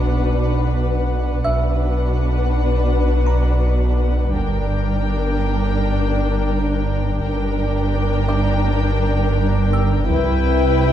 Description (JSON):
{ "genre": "cinematic, suspense film score", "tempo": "83 BPM", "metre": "4/4", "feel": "straight", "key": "unclear", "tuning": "A4 = 440 Hz", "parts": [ { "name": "muted symphonic violin section", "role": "melody", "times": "0.0-10.9 s", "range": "F#5 to G5", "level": "-30 LUFS", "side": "left 6 dB", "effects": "none" }, { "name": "muted symphonic violin section", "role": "second line", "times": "0.0-10.9 s", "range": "Bb4 to B4", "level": "-26 LUFS", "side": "left 5 dB", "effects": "none" }, { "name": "muted symphonic viola section", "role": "accompaniment", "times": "0.0-10.9 s", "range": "D4 to E4", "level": "-25 LUFS", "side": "right 1 dB", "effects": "none" }, { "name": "muted symphonic cello section", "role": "bass", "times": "0.0-10.9 s", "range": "C2 to B2", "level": "-24 LUFS", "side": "right 3 dB", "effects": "none" }, { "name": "muted symphonic double bass section", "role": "bass", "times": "0.0-10.9 s", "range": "G1 to C2", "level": "-23 LUFS", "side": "right 2 dB", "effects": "none" }, { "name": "pure sine sub bass", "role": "drone", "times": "0.0-10.9 s", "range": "G1 to C2", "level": "-21 LUFS", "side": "left 1 dB", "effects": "none" }, { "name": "impact", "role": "sound effects", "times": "0.0-1.4 s", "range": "none", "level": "barely audible", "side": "none", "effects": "none" }, { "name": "music box", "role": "texture", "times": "0.0-10.9 s", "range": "D5 to B6", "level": "-29 LUFS", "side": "right 4 dB", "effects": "none" }, { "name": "taiko ensemble", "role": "drums", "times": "4.3-5.7, 10.1-10.9 s", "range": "none", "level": "-29 LUFS", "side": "left 1 dB", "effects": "none" } ], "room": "moderate scoring stage reverb, RT60 1.8 s", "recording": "dark, warm production", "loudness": "-16 LUFS", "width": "side -10 dB against mid", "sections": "0.0-10.9 A section", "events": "impact 0.0-1.5", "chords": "0.0 Bm; 4.3 Gm; 10.1 Cmaj7" }